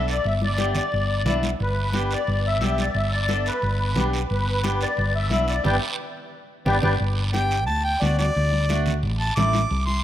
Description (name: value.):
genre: latin, cumbia.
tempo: 178 BPM.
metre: 4/4.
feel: straight.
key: G major.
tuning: A4 = 440 Hz.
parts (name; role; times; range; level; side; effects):
musette accordion; second line; 0.0-6.9 s; B4 to G5; -26 LUFS; left 2 dB; none.
clean electric guitar; accompaniment; 0.0-9.6 s; A3 to A4; -30 LUFS; equal; none.
hollow-body short-scale fingered electric bass; bass; 0.0-10.0 s; G1 to D2; -24 LUFS; equal; none.
guiro; percussion; 0.1-10.0 s; none; -34 LUFS; right 4 dB; none.
congas; percussion; 0.3-10.0 s; none; -30 LUFS; left 1 dB; none.
warm harmonica; melody; 7.3-10.0 s; D5 to D6; -24 LUFS; equal; none.
room: moderate plate reverb, RT60 2.6 s.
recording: rough home demo mix.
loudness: -20 LUFS.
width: side -12 dB against mid.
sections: 0.0-7.0 A section; 7.0-10.0 B section.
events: accordion solo 0.0-7.0; drum fill 5.6-7.0; band accent 5.6-7.0; harmonica solo 7.0-10.0.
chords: 0.0 G; 8.4 D.